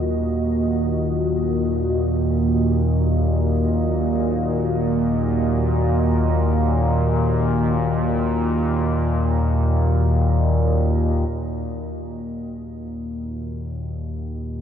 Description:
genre	dark ambient drone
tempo	free time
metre	none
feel	none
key	unclear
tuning	A4 = 440 Hz
part	deep dark ambient pad	sustained chords	0.0-14.6 s	Bb3 to Eb5	-26 LUFS	right 2 dB	chorus, built-in reverb
part	analog drone	drone	0.0-14.6 s	Eb2 to Bb2	-19 LUFS	equal	chorus, phaser
room	wet cathedral reverb, RT60 4.9 s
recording	dark, warm production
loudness	-18 LUFS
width	side -8 dB against mid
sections	0.0-11.3 A section; 11.3-14.6 B section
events	fade-out on ambient pad 0.0-11.3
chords	0.0 Ebm

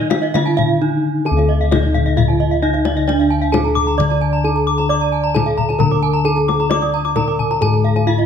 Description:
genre	Balinese gamelan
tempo	132 BPM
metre	4/4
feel	straight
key	D pelog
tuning	A4 = 440 Hz
part	gamelan-type bronze metallophone	melody	0.0-8.3 s	D4 to D5	-20 LUFS	right 2 dB	none
part	gamelan-type bronze metallophone	arpeggios	0.0-8.3 s	D5 to Eb6	-25 LUFS	right 8 dB	none
part	gamelan-type bronze metallophone	arpeggios	0.1-8.2 s	D5 to D6	-22 LUFS	left 3 dB	none
part	kendang	percussion	0.1-8.2 s	none	-22 LUFS	left 6 dB	none
part	gamelan-type bossed gongs	bass	0.3-8.3 s	D2 to D5	-18 LUFS	left 2 dB	none
room	light reverb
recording	close, detailed microphones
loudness	-14 LUFS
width	side -8 dB against mid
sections	0.0-1.3 A section; 1.3-8.3 B section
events	none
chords	none

